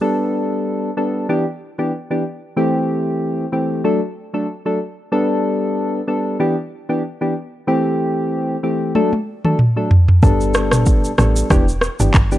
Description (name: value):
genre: afrobeats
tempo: 94 BPM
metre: 4/4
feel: swing 55% on 16ths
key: G major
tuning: A4 = 439 Hz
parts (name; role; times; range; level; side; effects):
- soft electric-piano-like synth keys; accompaniment; 0.0-12.4 s; E3 to A4; -18 LUFS; left 1 dB; chorus
- afro-pop drum kit; drums; 9.0-12.4 s; handclaps, kick drum, rim click, shaker, toms; -14 LUFS; equal; none
- woody log drum bass; bass; 10.2-12.4 s; E1 to A1; -17 LUFS; equal; none
room: digital ambience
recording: dry, gritty hardware recording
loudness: -16 LUFS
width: side -14 dB against mid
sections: 0.0-12.4 A section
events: drum fill 9.0-10.2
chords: 0.0 Gadd9; 1.3 Em7; 2.6 Am7; 3.8 D; 5.1 Gadd9; 6.4 Em7; 7.7 Am7; 9.0 D; 10.2 Gadd9; 11.5 Em7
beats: | 0.01 0.65 1.29 1.93 | 2.57 3.21 3.85 4.48 | 5.12 5.76 6.40 7.04 | 7.67 8.31 8.95 9.59 | 10.23 10.87 11.50 12.14